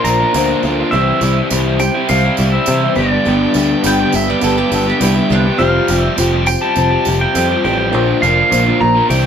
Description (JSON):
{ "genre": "folk rock and heartland rock", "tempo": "103 BPM", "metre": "4/4", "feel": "straight", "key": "C major", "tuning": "A4 = 440 Hz", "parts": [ { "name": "pedal steel guitar", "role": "melody", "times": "0.0-9.3 s", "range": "D5 to Bb5", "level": "-17 LUFS", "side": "right 1 dB", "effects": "none" }, { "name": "bright reed electric piano", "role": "accompaniment", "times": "0.0-9.3 s", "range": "B3 to C5", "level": "-22 LUFS", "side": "right 4 dB", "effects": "fast tremolo" }, { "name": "picked steel-string acoustic guitar", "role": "accompaniment", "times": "0.0-9.3 s", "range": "G2 to C5", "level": "-21 LUFS", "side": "left 8 dB", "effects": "none" }, { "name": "tonewheel organ", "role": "sustained chords", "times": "0.0-9.3 s", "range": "E3 to C5", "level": "-27 LUFS", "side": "equal", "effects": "overdrive, stopped rotary speaker" }, { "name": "crunchy overdriven guitar", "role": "riff", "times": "0.0-9.3 s", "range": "G2 to G4", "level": "-17 LUFS", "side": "right 1 dB", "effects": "none" }, { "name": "picked electric bass", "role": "bass", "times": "0.0-9.3 s", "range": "F1 to C3", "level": "-17 LUFS", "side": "equal", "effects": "none" }, { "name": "tambourine", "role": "percussion", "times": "0.0-9.2 s", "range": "none", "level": "-27 LUFS", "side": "right 6 dB", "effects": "none" }, { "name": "mandolin", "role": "second line", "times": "3.9-5.6 s", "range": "D4 to G5", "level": "-20 LUFS", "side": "right 2 dB", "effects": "none" } ], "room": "moderate studio reverb, RT60 0.7 s", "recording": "band playing live in one room", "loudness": "-11 LUFS", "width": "side -8 dB against mid", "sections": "0.0-9.3 A section", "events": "none", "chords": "0.0 Bbadd9; 0.9 C; 3.0 G; 5.6 Fsus2; 7.9 Bbadd9" }